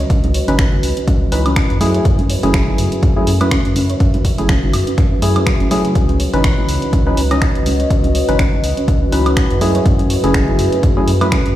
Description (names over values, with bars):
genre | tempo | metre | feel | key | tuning
deep house | 123 BPM | 4/4 | swing 56% on 16ths | C# minor | A4 = 440 Hz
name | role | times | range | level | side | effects
soft round pluck | arpeggios | 0.0-11.5 s | C#3 to C#5 | -23 LUFS | right 1 dB | ensemble chorus, sidechain pumping, tape echo
round analog bass | bass | 0.0-11.6 s | F#1 to F#2 | -19 LUFS | equal | sidechain pumping
deep dark ambient pad | texture | 0.0-11.6 s | F#4 to E5 | -23 LUFS | left 1 dB | chorus, built-in reverb, sidechain pumping
electronic kick drum | drums | 0.1-11.4 s | none | -15 LUFS | equal | none
punchy analog drum machine | drums | 0.1-11.5 s | finger snaps, hi-hat, woodblock | -24 LUFS | equal | overdrive
congas | percussion | 0.2-11.3 s | none | -27 LUFS | right 1 dB | none
percussive organ stab | stabs | 0.5-11.4 s | E3 to D#5 | -20 LUFS | equal | chorus, tape echo
room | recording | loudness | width
light reverb, digital ambience | played on a big sound system in a bare room, stone room reverb | -12 LUFS | side -13 dB against mid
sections
0.0-11.6 A section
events
none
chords
0.0 C#m9; 1.8 F#m9; 6.0 C#m9; 9.6 F#m9